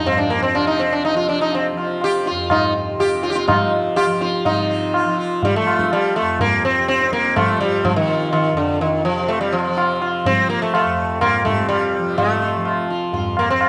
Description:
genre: indian classical, Hindustani.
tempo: 124 BPM.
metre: 4/4.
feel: straight.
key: F raga khamaj.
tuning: A4 = 441 Hz.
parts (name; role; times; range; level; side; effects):
sitar; melody; 0.0-13.7 s; D3 to G4; -20 LUFS; equal; none.
tanpura; drone; 0.0-13.7 s; F2 to F3; -29 LUFS; equal; none.
tabla; percussion; 0.1-13.7 s; none; -24 LUFS; equal; none.
room: moderate echo chamber reverb, RT60 1.7 s, studio ambience.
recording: none.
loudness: -19 LUFS.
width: mono.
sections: 0.0-4.5 A section; 4.5-13.7 B section.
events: none.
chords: none.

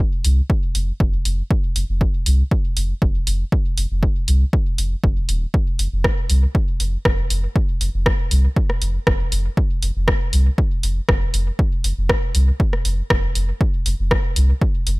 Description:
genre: dub techno.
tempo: 119 BPM.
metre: 4/4.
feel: straight.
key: unclear.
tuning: A4 = 444 Hz.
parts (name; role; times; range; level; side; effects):
soft dub sub bass; bass; 0.0-15.0 s; Eb1 to C2; -18 LUFS; equal; tube saturation, sidechain pumping.
deep house drum kit; drums; 0.2-15.0 s; hi-hat, rim click; -22 LUFS; equal; overdrive.
electronic kick drum; drums; 0.5-14.7 s; none; -19 LUFS; equal; overdrive.
room: little or no reverb.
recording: none.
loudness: -17 LUFS.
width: side -23 dB against mid.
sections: 0.0-15.0 A section.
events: none.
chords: none.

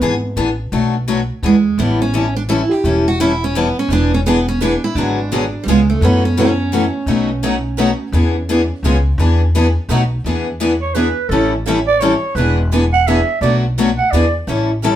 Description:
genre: acoustic string swing (jazz manouche).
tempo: 170 BPM.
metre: 3/4.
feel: swing 62% on 8ths.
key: E mixolydian.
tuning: A4 = 440 Hz.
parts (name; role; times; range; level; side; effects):
picked steel-string acoustic guitar; accompaniment; 0.0-14.9 s; B2 to A4; -18 LUFS; left 4 dB; none.
upright bass; bass; 0.0-15.0 s; E1 to F#2; -18 LUFS; equal; none.
picked steel-string acoustic guitar; melody; 1.5-9.9 s; G3 to G4; -17 LUFS; right 3 dB; none.
picked steel-string acoustic guitar; accompaniment; 3.9-14.9 s; B2 to B4; -22 LUFS; right 2 dB; none.
growling clarinet; second line; 10.8-14.3 s; A4 to F#5; -17 LUFS; right 4 dB; none.
room: moderate studio reverb, RT60 0.6 s.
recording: band playing live in one room.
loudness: -13 LUFS.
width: side -11 dB against mid.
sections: 0.0-10.2 A section; 10.2-15.0 B section.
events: clarinet solo 10.2-15.0.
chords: 0.0 E7; 0.7 Bm7; 1.4 E7; 1.8 A7; 3.9 E7; 5.0 G#m7b5; 5.7 C#7; 6.0 F#m7; 7.1 B7; 8.1 E7; 8.8 C#7; 9.2 E7; 9.9 B7; 10.2 E7; 11.3 A7; 12.4 E7; 13.4 Bm7; 14.1 E7.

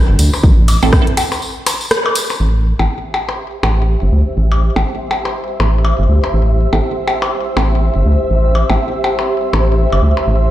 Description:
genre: minimal techno.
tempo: 122 BPM.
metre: 4/4.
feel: swing 59% on 16ths.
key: A minor.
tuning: A4 = 441 Hz.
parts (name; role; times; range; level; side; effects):
rubbery square bass; bass; 0.0-10.5 s; G1 to D2; -12 LUFS; equal; sidechain pumping.
house drum kit; drums; 0.2-2.3 s; hi-hat, ride cymbal, rim click; -19 LUFS; equal; low-pass filter on snare, low-pass filter on hats, low-pass filter on cymbals.
tambourine; percussion; 0.2-2.4 s; none; -24 LUFS; left 2 dB; none.
percussion blips; percussion; 0.3-10.3 s; none; -20 LUFS; left 2 dB; digital delay.
electronic kick drum; drums; 0.4-1.0 s; none; -11 LUFS; equal; none.
filtered dub chord stab; stabs; 0.8-9.6 s; C4 to A4; -23 LUFS; right 4 dB; phaser, digital delay.
flickering grainy texture; texture; 3.1-10.5 s; E5; -27 LUFS; right 2 dB; built-in reverb, sidechain pumping.
granular cloud pad; texture; 3.2-10.5 s; G4 to E5; -20 LUFS; equal; built-in reverb, sidechain pumping.
room: light reverb.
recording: played on a big sound system in a bare room, stone room reverb.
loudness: -12 LUFS.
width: side -13 dB against mid.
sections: 0.0-2.4 A section; 2.4-10.5 B section.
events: drop 0.0-2.4; break 1.4-2.4; band accent 1.9.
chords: 0.0 Am.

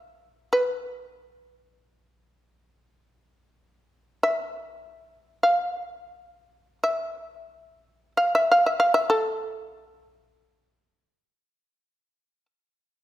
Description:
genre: japanese traditional, Japanese chamber music.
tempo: free time.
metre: none.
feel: none.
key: unclear.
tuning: A4 = 440 Hz.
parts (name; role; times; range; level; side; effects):
shamisen; solo; 0.0-12.5 s; A4 to F5; -21 LUFS; equal; none.
room: moderate scoring stage reverb, RT60 1.6 s.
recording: minimal, uncompressed stereo recording.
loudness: -22 LUFS.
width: side -14 dB against mid.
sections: 0.0-13.0 A section.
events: none.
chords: none.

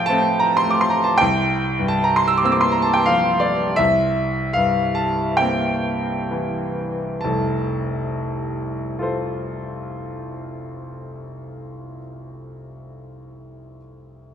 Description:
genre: classical, romantic nocturne for solo piano.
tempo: 31-55 BPM.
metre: 4/4.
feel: rubato.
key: F major.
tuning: A4 = 440 Hz.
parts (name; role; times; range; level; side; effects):
bright grand piano; solo; 0.0-14.3 s; F1 to E6; -19 LUFS; equal; none.
room: wet recital hall reverb, RT60 1.8 s.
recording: none.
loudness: -18 LUFS.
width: side -8 dB against mid.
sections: 0.0-7.2 A section; 7.2-14.3 B section.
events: slowing down 0.0-7.2.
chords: 0.0 F/A; 1.2 C7sus4; 3.8 C7; 7.2 F.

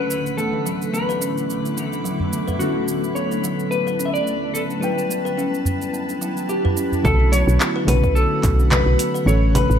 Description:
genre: organic downtempo.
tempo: 108 BPM.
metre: 4/4.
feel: swing 56% on 16ths.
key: B minor.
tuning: A4 = 440 Hz.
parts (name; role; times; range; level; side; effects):
clean lap steel guitar; melody; 0.0-9.8 s; F#4 to E5; -24 LUFS; left 2 dB; ping-pong delay.
muted felt-like synth keys; accompaniment; 0.0-9.8 s; D3 to G5; -27 LUFS; right 1 dB; chorus, sidechain pumping, digital delay.
granular cloud pad; sustained chords; 0.0-9.8 s; D3 to D6; -29 LUFS; equal; built-in reverb, sidechain pumping.
drifting glass-harmonics texture; texture; 0.0-7.1 s; B4 to B5; -34 LUFS; equal; chorus, built-in reverb.
afro-pop drum kit; drums; 0.1-9.8 s; cabasa, congas, handclaps, hi-hat; -25 LUFS; right 2 dB; none.
kalimba; arpeggios; 0.4-9.4 s; F#3 to B4; -26 LUFS; left 1 dB; vintage 12-bit sampler grit, digital delay.
udu; percussion; 2.2-7.0 s; none; -24 LUFS; right 2 dB; none.
woody FM bass; bass; 7.0-9.8 s; A1 to B1; -17 LUFS; equal; sidechain pumping.
electronic kick drum; drums; 7.0-8.6 s; none; -21 LUFS; equal; none.
room: light reverb.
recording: none.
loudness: -18 LUFS.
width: side -8 dB against mid.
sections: 0.0-7.0 A section; 7.0-9.8 B section.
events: none.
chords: 0.4 Asus4; 2.6 Bm7; 4.8 Emadd9; 7.0 Bm7; 9.3 Asus4.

